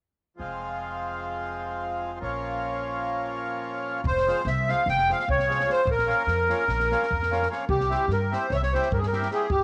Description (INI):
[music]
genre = balkan folk, Balkan wedding band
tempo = 296 BPM (eighths)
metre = 9/8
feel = straight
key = F harmonic minor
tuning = A4 = 439 Hz
[part]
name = accordion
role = accompaniment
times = 0.4-9.5 s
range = F3 to G4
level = -33 LUFS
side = equal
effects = none
[part]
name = upright bass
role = bass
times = 0.4-9.6 s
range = F1 to G2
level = -33 LUFS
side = equal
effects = none
[part]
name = accordion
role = melody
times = 4.1-9.6 s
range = G4 to G5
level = -26 LUFS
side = equal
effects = light tremolo tuning
[part]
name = compact cocktail drum kit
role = percussion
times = 4.1-9.6 s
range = kick drum, snare drum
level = -36 LUFS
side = equal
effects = none
[sound]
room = moderate echo chamber reverb, RT60 2.1 s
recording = none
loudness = -26 LUFS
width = mono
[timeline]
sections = 0.4-4.0 A section; 4.0-9.6 B section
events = none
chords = 0.4 Fm; 2.2 Bbm; 4.0 Fm; 5.9 Bbm; 7.7 C